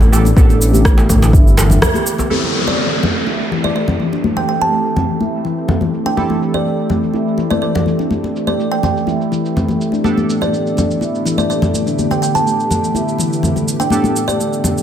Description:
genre	afro house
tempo	124 BPM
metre	4/4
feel	straight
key	A minor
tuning	A4 = 440 Hz
part	ethereal airy pad	sustained chords	0.1-14.8 s	A2 to G4	-22 LUFS	equal	ensemble chorus, built-in reverb, sidechain pumping
part	handpan	arpeggios	0.0-14.8 s	E3 to G4	-20 LUFS	right 1 dB	sidechain pumping, low-pass filter, dub echo
part	dark detuned saw bass	bass	0.0-1.8 s	G1 to A1	-13 LUFS	equal	tube saturation, sidechain pumping
part	electronic cabasa and rim click	drums	0.0-14.8 s	none	-22 LUFS	right 1 dB	low-pass filter on perc, low-pass filter on snare, low-pass filter on room
part	congas	percussion	0.0-14.7 s	none	-20 LUFS	left 3 dB	none
part	djembe	percussion	0.0-2.3 s	none	-20 LUFS	right 1 dB	none
part	warm analog keys	stabs	0.1-14.8 s	A2 to A4	-24 LUFS	right 2 dB	chorus, phaser, sidechain pumping, dub echo
part	electronic kick drum	drums	0.4-1.4 s	none	-10 LUFS	equal	none
part	downlifter	sound effects	2.3-6.2 s	none	-21 LUFS	equal	none
part	kalimba	melody	2.7-14.4 s	D5 to A5	-21 LUFS	right 2 dB	dub echo
room	light reverb, small room ambience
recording	none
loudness	-13 LUFS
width	side -9 dB against mid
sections	0.0-2.3 A section; 2.3-14.8 B section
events	break 1.8-2.3; band accent 1.8; filter sweep on drum 2.3-14.8; filter sweep on handpan 2.3-14.8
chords	0.0 Gadd9; 2.3 Am7; 10.0 Gadd9/A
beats	| 0.37 0.85 1.33 1.82 | 2.30 2.79 3.27 3.75 | 4.24 4.72 5.21 5.69 | 6.17 6.66 7.14 7.63 | 8.11 8.59 9.08 9.56 | 10.04 10.53 11.01 11.50 | 11.98 12.46 12.95 13.43 | 13.92 14.40

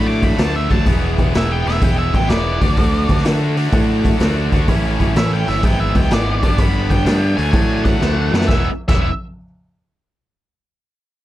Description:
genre	blues rock power trio and southern rock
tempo	126 BPM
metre	4/4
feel	swing 67% on 8ths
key	E mixolydian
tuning	A4 = 440 Hz
part	octave-fuzz lead guitar	melody	0.0-9.1 s	D5 to D6	-24 LUFS	right 1 dB	distortion
part	tight distorted guitar	riff	0.0-9.1 s	G2 to F#4	-21 LUFS	equal	distortion
part	growling picked electric bass	bass	0.0-9.1 s	E1 to D3	-19 LUFS	equal	overdrive
part	raw garage drum kit	drums	0.2-9.0 s	crash cymbal, hi-hat, kick drum, snare drum	-17 LUFS	equal	none
room	little or no reverb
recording	none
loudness	-14 LUFS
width	side -14 dB against mid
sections	0.0-8.5 A section; 8.5-10.4 B section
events	drum fill 8.0-8.5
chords	0.0 D; 0.9 E; 2.5 D; 4.7 A; 5.6 E/G#; 6.3 G; 7.3 D; 8.5 E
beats	0.38 | 0.86 1.34 1.81 2.29 | 2.77 3.25 3.72 4.20 | 4.68 5.16 5.63 6.11 | 6.59 7.06 7.54 8.02 | 8.49 8.97

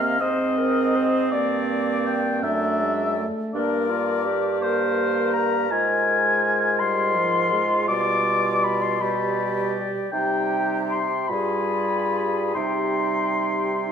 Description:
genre	classical, slow romantic movement for wind quintet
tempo	46-57 BPM (dotted quarters)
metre	6/8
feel	rubato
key	unclear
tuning	A4 = 440 Hz
part	silver concert flute	melody	0.0-13.9 s	G4 to Eb5	-28 LUFS	left 7 dB	none
part	mellow oboe	second line	0.0-13.9 s	C5 to D6	-24 LUFS	left 3 dB	none
part	warm French horn	accompaniment	0.0-13.9 s	F3 to C4	-30 LUFS	equal	none
part	warm clarinet	accompaniment	0.0-13.9 s	C4 to G4	-29 LUFS	right 9 dB	none
part	warm bassoon	bass	0.0-13.9 s	F#2 to C3	-27 LUFS	right 3 dB	none
room	wet scoring stage reverb, RT60 1.7 s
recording	none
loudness	-20 LUFS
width	side -7 dB against mid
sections	0.0-13.9 A section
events	none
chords	0.0 Cm; 1.3 Gm; 2.4 D/F#; 3.5 Gm; 5.7 Fm/Ab; 7.9 G7/B; 10.1 Cm; 11.3 G7b9; 12.5 Cm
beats	0.19 | 1.31 2.42 | 3.54 4.62 | 5.71 6.80 | 7.88 9.01 | 10.12 11.29 | 12.55 13.83

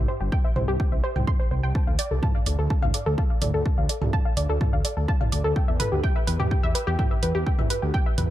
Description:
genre	melodic techno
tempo	126 BPM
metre	4/4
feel	straight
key	unclear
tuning	A4 = 438 Hz
part	analog pluck	arpeggios	0.0-8.2 s	G4 to C6	-28 LUFS	equal	chorus, sidechain pumping, digital delay
part	swelling detuned saw bass	bass	0.0-8.3 s	G1 to E2	-25 LUFS	equal	sidechain pumping
part	electronic kick drum	drums	0.3-8.0 s	none	-24 LUFS	equal	none
part	techno drum kit	drums	0.6-8.3 s	hi-hat, toms	-30 LUFS	right 1 dB	none
room	little or no reverb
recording	dark, warm production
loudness	-21 LUFS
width	side -13 dB against mid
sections	0.0-8.3 A section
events	none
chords	0.0 C5; 1.8 Dm; 5.6 Em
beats	0.32 0.80 1.27 | 1.75 2.23 2.70 3.18 | 3.66 4.13 4.61 5.08 | 5.56 6.04 6.51 6.99 | 7.46 7.94

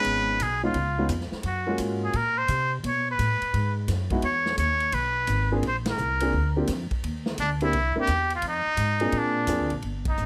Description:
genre	jazz, small-group swing and bop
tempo	172 BPM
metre	4/4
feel	swing 65% on 8ths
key	unclear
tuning	A4 = 438 Hz
part	trumpet with straight mute	melody	0.0-10.3 s	D4 to Db5	-28 LUFS	equal	none
part	warm grand piano	accompaniment	0.0-9.7 s	Ab3 to Bb4	-30 LUFS	equal	none
part	upright bass	bass	0.0-10.3 s	G1 to C3	-31 LUFS	equal	none
part	swinging big-band drum kit	drums	0.0-10.3 s	hi-hat, kick drum, ride cymbal, snare drum	-38 LUFS	equal	none
room	light reverb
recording	none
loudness	-26 LUFS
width	mono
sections	0.0-9.8 A section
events	band accent 5.8, 10.0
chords	0.1 Db7; 1.4 Gbmaj7; 2.8 B7(no3); 4.2 Emaj7; 5.6 Bb; 7.0 Ebmaj7; 7.7 C7; 8.4 Fm7; 9.1 Bb7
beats	| 0.06 0.41 0.76 1.10 | 1.45 1.80 2.15 2.49 | 2.84 3.19 3.54 3.89 | 4.24 4.59 4.93 5.29 | 5.63 5.98 6.33 6.68 | 7.03 7.38 7.73 8.08 | 8.43 8.78 9.13 9.48 | 9.84 10.19

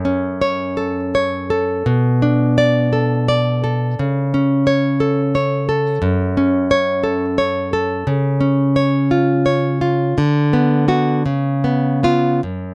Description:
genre	romantic piece for solo classical guitar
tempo	49-60 BPM (dotted quarters)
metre	6/8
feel	rubato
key	A major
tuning	A4 = 440 Hz
part	nylon-string guitar	solo	0.0-12.7 s	F#2 to D5	-17 LUFS	equal	none
room	light reverb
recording	none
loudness	-17 LUFS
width	mono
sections	0.0-12.7 A section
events	none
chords	0.0 F#m; 1.9 Bm7; 4.0 A/C#; 6.0 F#m; 8.1 C#; 10.2 Bm/D; 11.3 C#7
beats	0.77 | 1.86 2.92 | 3.98 5.00 | 6.02 7.05 | 8.08 9.11 | 10.17 11.27 | 12.44

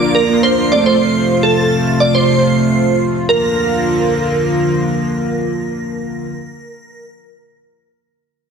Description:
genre	pop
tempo	105 BPM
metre	4/4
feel	straight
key	Bb major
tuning	A4 = 441 Hz
part	shimmering bell with halo	melody	0.0-7.0 s	A4 to D5	-16 LUFS	right 2 dB	ensemble chorus
part	mellow synth brass	accompaniment	0.0-1.0 s	A3 to Bb4	-18 LUFS	right 2 dB	chorus
part	chorused pulse-width pad	sustained chords	0.0-6.3 s	C3 to F4	-16 LUFS	equal	none
room	moderate scoring stage reverb, RT60 2.1 s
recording	dense, heavily limited modern master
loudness	-12 LUFS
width	side -6 dB against mid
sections	0.0-3.3 A section; 3.3-5.6 B section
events	none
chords	0.0 Bb; 0.7 F; 3.3 Bb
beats	0.43 | 1.00 1.57 2.15 2.72 | 3.29 3.86 4.43 5.00

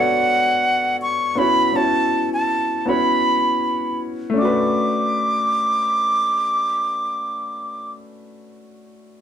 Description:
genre	soul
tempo	80 BPM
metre	4/4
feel	swing 54% on 16ths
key	B minor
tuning	A4 = 440 Hz
part	breathy silver concert flute	melody	0.0-7.9 s	F#5 to D6	-19 LUFS	right 1 dB	none
part	warm grand piano	accompaniment	0.0-9.2 s	A3 to C#5	-22 LUFS	left 2 dB	none
room	moderate studio reverb, RT60 0.5 s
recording	band playing live in one room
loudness	-17 LUFS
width	side -9 dB against mid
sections	0.0-4.4 A section; 4.4-7.4 B section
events	none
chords	0.0 Bm9; 1.4 F#7sus4; 4.4 Bm9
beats	0.62 | 1.37 2.12 2.87 3.62 | 4.37 5.12 5.87 6.62

